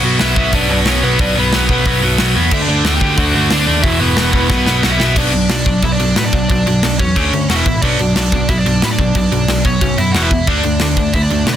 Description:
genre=punk rock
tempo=181 BPM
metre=4/4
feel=straight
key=B minor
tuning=A4 = 440 Hz
part: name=cranked stack guitar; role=melody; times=0.0-11.6 s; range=B3 to G5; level=-19 LUFS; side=equal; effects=overdrive
part: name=biting overdriven guitar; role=riff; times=0.0-11.6 s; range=E2 to D4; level=-15 LUFS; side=equal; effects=none
part: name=overdriven picked electric bass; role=bass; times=0.0-11.6 s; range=E1 to B2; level=-18 LUFS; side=equal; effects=none
part: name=tight metal drum kit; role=drums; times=0.2-11.5 s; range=crash cymbal, hi-hat, kick drum, snare drum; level=-17 LUFS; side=equal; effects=none
room=little or no reverb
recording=dense, heavily limited modern master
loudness=-11 LUFS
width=side -10 dB against mid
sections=0.0-5.2 A section; 5.2-11.6 B section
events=drum fill 4.5-5.2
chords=0.0 Bm; 2.5 D; 3.8 E5; 4.5 B5; 5.2 Bm; 7.2 D5; 7.5 E5; 7.8 Bm; 10.1 E5; 10.5 D5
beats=0.20 0.53 0.86 | 1.20 1.53 1.86 2.19 | 2.52 2.85 3.18 3.51 | 3.84 4.17 4.51 4.84 | 5.17 5.50 5.83 6.16 | 6.50 6.83 7.16 7.49 | 7.82 8.15 8.48 8.82 | 9.15 9.48 9.81 10.14 | 10.47 10.80 11.13 11.46

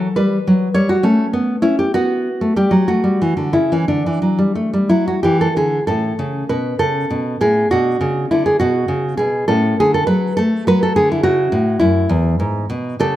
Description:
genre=classical, baroque-style dance for nylon-string guitar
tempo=58-71 BPM (dotted quarters)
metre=6/8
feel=rubato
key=D major, A major from 5.9 s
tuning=A4 = 441 Hz
part: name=nylon-string guitar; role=solo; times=0.0-13.2 s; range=E2 to C#5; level=-14 LUFS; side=equal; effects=none
room=moderate recital hall reverb, RT60 1.6 s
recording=none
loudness=-14 LUFS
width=side -13 dB against mid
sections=0.0-5.9 A section; 5.9-13.2 A section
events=none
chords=0.1 G; 1.0 A; 1.9 B5; 2.9 A7; 3.9 D; 5.9 A; 7.7 Bm69; 9.5 A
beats=| 0.14 1.02 | 1.94 2.89 | 3.89 4.89 | 5.86 6.79 | 7.71 8.61 | 9.51 10.40 | 11.28 12.13 | 13.01

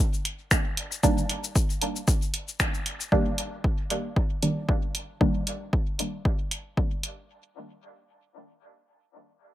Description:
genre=dub techno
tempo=115 BPM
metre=4/4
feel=swing 56% on 16ths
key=unclear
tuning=A4 = 441 Hz
part: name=punchy analog drum machine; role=drums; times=0.1-7.2 s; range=cabasa, finger snaps, hi-hat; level=-29 LUFS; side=equal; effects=none
part: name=electronic kick drum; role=drums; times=0.5-6.9 s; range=none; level=-25 LUFS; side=equal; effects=overdrive
part: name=filtered dub chord stab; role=stabs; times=1.0-5.4 s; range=Eb3 to D4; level=-29 LUFS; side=right 1 dB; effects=chorus, phaser, vintage 12-bit sampler grit, dub echo
room=light reverb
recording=echo-heavy mix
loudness=-24 LUFS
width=side -14 dB against mid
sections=0.0-3.1 A section; 3.1-7.3 B section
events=none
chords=0.0 Ebmaj7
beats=0.51 | 1.03 1.55 2.08 2.60 | 3.12 3.64 4.16 4.69 | 5.21 5.73 6.25 6.77

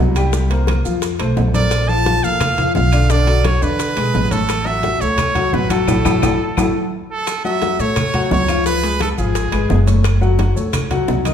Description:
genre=latin, salsa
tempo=173 BPM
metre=4/4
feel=straight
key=unclear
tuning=A4 = 441 Hz
part: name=clear grand piano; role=accompaniment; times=0.0-11.3 s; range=D3 to G5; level=-21 LUFS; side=left 4 dB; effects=none
part: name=upright bass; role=bass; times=0.0-11.3 s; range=F#1 to A2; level=-18 LUFS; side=equal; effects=none
part: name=claves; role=percussion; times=0.2-11.3 s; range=none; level=-32 LUFS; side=left 2 dB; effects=none
part: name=maracas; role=percussion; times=0.2-11.3 s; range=none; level=-34 LUFS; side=right 7 dB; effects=none
part: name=timbales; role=percussion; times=0.2-11.3 s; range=none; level=-28 LUFS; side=right 5 dB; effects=none
part: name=bongos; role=percussion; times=0.3-11.3 s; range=none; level=-27 LUFS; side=left 4 dB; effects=none
part: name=congas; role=percussion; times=0.3-11.3 s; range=none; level=-24 LUFS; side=left 1 dB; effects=none
part: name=brilliant trumpet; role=melody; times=1.6-9.8 s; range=G#4 to A5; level=-20 LUFS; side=right 3 dB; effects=none
room=wet large studio reverb, RT60 1.4 s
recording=band playing live in one room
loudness=-14 LUFS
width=side -8 dB against mid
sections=0.0-7.3 A section; 7.3-11.3 A section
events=band accent 5.9-7.3; drum fill 6.4-7.3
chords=0.3 C5; 1.0 F; 1.7 Bbmaj7; 3.1 Bm7; 3.8 E7; 4.5 A6; 8.7 C#7; 10.0 F#m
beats=| 0.34 0.68 1.03 1.37 | 1.72 2.07 2.41 2.76 | 3.11 3.45 3.80 4.15 | 4.49 4.84 5.19 5.54 | 5.88 6.23 6.58 6.92 | 7.27 7.62 7.97 8.31 | 8.66 9.01 9.35 9.70 | 10.05 10.39 10.74 11.09

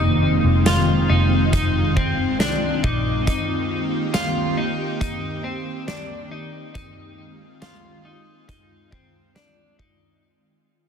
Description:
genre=dream pop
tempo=69 BPM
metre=4/4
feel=straight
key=unclear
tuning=A4 = 439 Hz
part: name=ethereal airy pad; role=sustained chords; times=0.0-10.2 s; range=Eb3 to G4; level=-23 LUFS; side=equal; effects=ensemble chorus, built-in reverb
part: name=clean electric guitar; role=arpeggios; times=0.0-10.2 s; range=C4 to F4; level=-25 LUFS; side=left 2 dB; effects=lush chorus, ping-pong delay
part: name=vintage muted picked electric bass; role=bass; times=0.0-3.2 s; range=F1 to C2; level=-21 LUFS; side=equal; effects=none
part: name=vibraphone with medium mallets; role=texture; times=0.0-3.7 s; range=D6 to Eb6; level=-38 LUFS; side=right 1 dB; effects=ping-pong delay
part: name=loose indie drum kit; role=drums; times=0.7-10.0 s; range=hi-hat, kick drum, snare drum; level=-25 LUFS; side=equal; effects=none
room=light reverb, small room ambience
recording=dense, heavily limited modern master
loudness=-18 LUFS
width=side -7 dB against mid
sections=0.0-10.2 A section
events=fade-out 0.0-10.2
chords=0.0 Fm7; 3.3 Cm7; 6.7 Fm7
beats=0.66 1.53 2.40 | 3.27 4.14 5.01 5.88 | 6.75 7.62 8.49 9.36

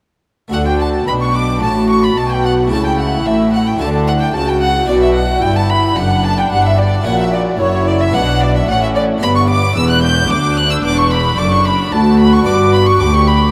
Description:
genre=classical, baroque-style concerto movement with solo episodes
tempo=111 BPM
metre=4/4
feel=straight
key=D major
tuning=A4 = 440 Hz
part: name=rich chamber violin section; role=melody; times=0.5-13.5 s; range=C#5 to G6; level=-24 LUFS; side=equal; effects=none
part: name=rich violin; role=melody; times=0.5-13.5 s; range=C#5 to G6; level=-21 LUFS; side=equal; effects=none
part: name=warm chamber violin section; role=second line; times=0.5-13.5 s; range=C#5 to G6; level=-25 LUFS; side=equal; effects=none
part: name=dark chamber viola section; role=accompaniment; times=0.5-13.5 s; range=B3 to G4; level=-21 LUFS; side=equal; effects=none
part: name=harpsichord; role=accompaniment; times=0.5-13.5 s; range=D2 to D5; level=-26 LUFS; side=equal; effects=none
part: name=rich chamber cello section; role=bass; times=0.5-13.5 s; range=D2 to D3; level=-19 LUFS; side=equal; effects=none
part: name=rich chamber double bass section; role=bass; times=0.5-13.5 s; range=E1 to D2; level=-21 LUFS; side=equal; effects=none
room=moderate huge ambient reverb, RT60 8.4 s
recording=in a vast, echoing space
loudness=-14 LUFS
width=mono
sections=0.5-13.5 A section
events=none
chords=0.5 D; 2.7 A/C#; 3.8 D; 4.9 Bm; 7.1 F#/A#; 8.1 Bm; 9.2 G; 11.4 D/F#; 12.5 G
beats=| 0.53 1.07 1.62 2.16 | 2.71 3.25 3.80 4.34 | 4.89 5.43 5.97 6.52 | 7.06 7.60 8.14 8.69 | 9.22 9.76 10.30 10.84 | 11.38 11.93 12.46 13.01

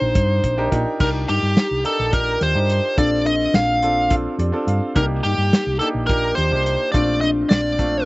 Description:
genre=progressive instrumental, band music in an uneven meter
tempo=212 BPM (eighths)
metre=7/8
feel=straight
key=C dorian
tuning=A4 = 443 Hz
part: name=biting lead guitar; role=melody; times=0.0-8.1 s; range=G4 to F5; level=-20 LUFS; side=equal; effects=overdrive
part: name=bright grand piano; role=accompaniment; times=0.0-8.1 s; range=A3 to F5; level=-26 LUFS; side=right 1 dB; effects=none
part: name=kalimba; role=arpeggios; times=0.0-7.7 s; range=D4 to G4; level=-25 LUFS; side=left 2 dB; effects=none
part: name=fingered electric bass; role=bass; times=0.0-8.1 s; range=Bb1 to G2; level=-22 LUFS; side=equal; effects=none
part: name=warm soul drum kit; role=drums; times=0.2-7.9 s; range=crash cymbal, hi-hat, kick drum, snare drum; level=-20 LUFS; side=equal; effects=none
room=little or no reverb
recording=recorded outdoors, with no room sound, nothing above 7.9 kHz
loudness=-16 LUFS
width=side -21 dB against mid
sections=0.0-1.0 A section; 1.0-8.1 B section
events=grand piano fill 4.1-5.0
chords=0.0 Cm7; 3.0 Bbmaj7; 5.0 Cm7; 6.9 Bbmaj7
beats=0.15 0.43 0.72 | 1.00 1.28 1.56 1.85 2.13 2.41 2.70 | 2.98 3.26 3.54 3.83 4.11 4.39 4.68 | 4.96 5.24 5.53 5.81 6.09 6.37 6.66 | 6.94 7.22 7.51 7.79

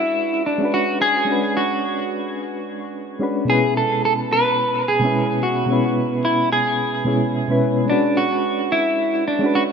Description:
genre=sunset chillout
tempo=109 BPM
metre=4/4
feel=swing 57% on 16ths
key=B dorian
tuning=A4 = 440 Hz
part: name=clean electric guitar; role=melody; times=0.0-9.6 s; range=D4 to B4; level=-20 LUFS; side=equal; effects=wide subtle chorus, dub echo
part: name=soft electric-piano-like synth keys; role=accompaniment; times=0.0-9.7 s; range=B2 to B4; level=-21 LUFS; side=equal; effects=chorus, tremolo, auto-pan, dub echo
room=wet echo chamber reverb, RT60 2.1 s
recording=echo-heavy mix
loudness=-17 LUFS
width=side -6 dB against mid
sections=0.0-9.7 A section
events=none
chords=0.0 Bm69; 3.5 C#m7/B; 7.9 Bm69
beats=0.19 0.74 | 1.29 1.84 2.39 2.94 | 3.49 4.04 4.59 5.14 | 5.69 6.24 6.79 7.34 | 7.89 8.44 8.99 9.54

